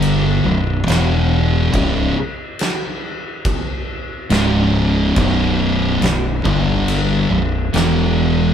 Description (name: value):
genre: stoner and doom metal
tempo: 70 BPM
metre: 4/4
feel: straight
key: unclear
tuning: A4 = 440 Hz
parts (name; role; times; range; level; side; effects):
- thick fuzz guitar; riff; 0.0-8.5 s; B1 to G3; -16 LUFS; equal; distortion
- fingered electric bass; bass; 0.0-8.5 s; B0 to G1; -20 LUFS; equal; tube saturation
- oversized low-tuned drum kit; drums; 0.0-7.9 s; crash cymbal, kick drum, snare drum; -22 LUFS; equal; none
room: light reverb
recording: band playing live in one room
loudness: -15 LUFS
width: side -8 dB against mid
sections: 0.0-8.5 A section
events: none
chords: 0.4 B5; 0.9 E5; 1.7 C#5; 5.2 B5; 6.4 G5; 7.3 B5; 7.7 E5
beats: 0.02 0.88 | 1.73 2.59 3.45 4.31 | 5.16 6.02 6.88 7.74